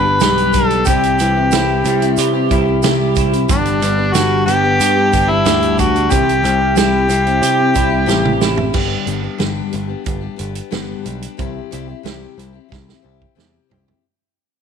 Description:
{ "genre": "folk rock and heartland rock", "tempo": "91 BPM", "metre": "4/4", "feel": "straight", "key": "unclear", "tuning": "A4 = 443 Hz", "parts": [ { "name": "overdriven harmonica", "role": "melody", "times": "0.0-8.4 s", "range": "D4 to B4", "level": "-16 LUFS", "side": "left 2 dB", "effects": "none" }, { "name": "picked steel-string acoustic guitar", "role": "accompaniment", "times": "0.0-14.0 s", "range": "G2 to G4", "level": "-21 LUFS", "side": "left 12 dB", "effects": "none" }, { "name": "electric guitar through a small old amp", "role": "riff", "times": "0.0-8.7 s", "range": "G2 to G4", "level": "-20 LUFS", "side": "right 5 dB", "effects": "analog chorus" }, { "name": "picked electric bass", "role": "bass", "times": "0.0-13.9 s", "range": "G1 to C3", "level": "-20 LUFS", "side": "right 2 dB", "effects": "none" }, { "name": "vintage drum kit", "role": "drums", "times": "0.2-14.0 s", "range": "crash cymbal, hi-hat, kick drum, snare drum, toms", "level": "-20 LUFS", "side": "right 5 dB", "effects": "none" }, { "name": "tube shaker", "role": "percussion", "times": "0.2-8.6 s", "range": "none", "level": "-31 LUFS", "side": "right 17 dB", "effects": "none" } ], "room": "light reverb, small room ambience", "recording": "1960s-style stereo with parts hard left and right", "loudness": "-12 LUFS", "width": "side -7 dB against mid", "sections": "0.0-8.7 A section; 8.7-14.0 B section", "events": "drum fill 8.1-8.7, 12.7-14.0; fade-out 8.7-14.0", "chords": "0.0 G; 0.9 C; 3.5 G; 6.1 C; 8.7 G; 11.4 C" }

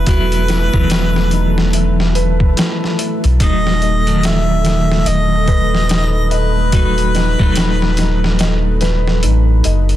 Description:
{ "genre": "trip hop", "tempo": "72 BPM", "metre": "4/4", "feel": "swing 60% on 16ths", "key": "unclear", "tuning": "A4 = 440 Hz", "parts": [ { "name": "mellow harmonica", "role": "melody", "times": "0.0-8.8 s", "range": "B4 to E5", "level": "-22 LUFS", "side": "left 1 dB", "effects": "dub echo" }, { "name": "clean electric guitar", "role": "accompaniment", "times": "0.0-10.0 s", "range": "D#3 to E4", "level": "-21 LUFS", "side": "left 1 dB", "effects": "tremolo, tape echo" }, { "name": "deep dark ambient pad", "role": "sustained chords", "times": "0.0-10.0 s", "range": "A3 to A4", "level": "-24 LUFS", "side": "right 3 dB", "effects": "chorus, built-in reverb" }, { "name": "felt-muted upright piano", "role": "arpeggios", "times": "0.0-10.0 s", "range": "D#3 to E5", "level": "-25 LUFS", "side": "left 1 dB", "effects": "dub echo" }, { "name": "soft dub sub bass", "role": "bass", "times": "0.0-10.0 s", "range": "D#1 to B1", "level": "-15 LUFS", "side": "equal", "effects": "tube saturation" }, { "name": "trip hop sampler-style drum kit", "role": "drums", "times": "0.1-10.0 s", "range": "hi-hat, kick drum, snare drum", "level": "-18 LUFS", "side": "equal", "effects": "overdrive" } ], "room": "digital ambience", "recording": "dense, heavily limited modern master", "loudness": "-12 LUFS", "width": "side -13 dB against mid", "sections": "0.0-10.0 A section", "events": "none", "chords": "0.0 Esus2; 3.4 B7/D#" }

